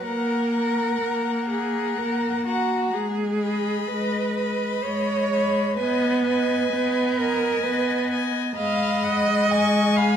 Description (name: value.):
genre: classical, slow romantic movement for string quartet.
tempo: 64 BPM.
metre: 3/4.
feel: rubato.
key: unclear.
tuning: A4 = 441 Hz.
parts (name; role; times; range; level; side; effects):
clear violin; melody; 0.0-10.2 s; G#5 to Db6; -30 LUFS; left 10 dB; none.
rich violin; second line; 0.0-10.2 s; D#5 to Ab5; -30 LUFS; left 6 dB; none.
clear viola; accompaniment; 0.0-10.2 s; G#3 to B3; -24 LUFS; left 1 dB; none.
rich cello; bass; 0.0-10.2 s; F#4 to F5; -25 LUFS; right 4 dB; none.
room: wet recital hall reverb, RT60 1.6 s.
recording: none.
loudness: -21 LUFS.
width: side -8 dB against mid.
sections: 0.0-10.2 A section.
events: none.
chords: 0.0 F#/A#; 2.9 G#m; 5.8 G#m/B; 8.6 Fm7b5/Ab.